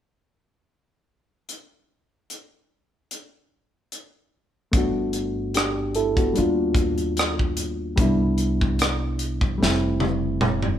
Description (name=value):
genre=R&B, neo-soul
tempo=74 BPM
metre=4/4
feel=swing 55% on 16ths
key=G major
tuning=A4 = 439 Hz
part: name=tight funk drum kit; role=drums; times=1.5-10.8 s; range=hi-hat, kick drum, rim click, snare drum, toms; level=-24 LUFS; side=equal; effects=none
part: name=reed electric piano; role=accompaniment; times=4.7-10.8 s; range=G3 to A4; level=-24 LUFS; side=equal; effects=none
part: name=upright bass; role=bass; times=4.7-10.8 s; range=F1 to Eb2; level=-27 LUFS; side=equal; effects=none
room=light reverb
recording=band playing live in one room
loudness=-20 LUFS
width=side -10 dB against mid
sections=1.5-4.7 A section; 4.7-10.8 B section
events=drum fill 9.6-10.8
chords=1.5 N.C.; 4.7 Gmaj9; 6.4 Ebmaj9; 8.0 Cmaj9; 9.6 Fmaj9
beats=| 1.49 2.30 3.11 3.92 | 4.73 5.54 6.36 7.17 | 7.98 8.79 9.60 10.41